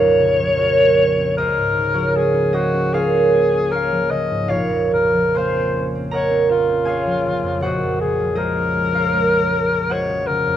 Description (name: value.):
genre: classical, impressionist duo for alto saxophone and harp.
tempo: 67-82 BPM.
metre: 4/4.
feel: rubato.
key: unclear.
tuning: A4 = 441 Hz.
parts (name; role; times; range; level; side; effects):
clear alto saxophone; melody; 0.0-10.6 s; F4 to Eb5; -19 LUFS; left 4 dB; none.
concert harp; accompaniment; 0.0-10.6 s; Bb1 to C6; -18 LUFS; right 2 dB; none.
room: moderate recital hall reverb, RT60 1.8 s.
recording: close, detailed microphones.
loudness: -16 LUFS.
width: side -11 dB against mid.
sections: 0.0-10.6 A section.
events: none.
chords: 0.0 Bbmadd9; 1.4 Db6; 4.5 Gbmaj9/Bb.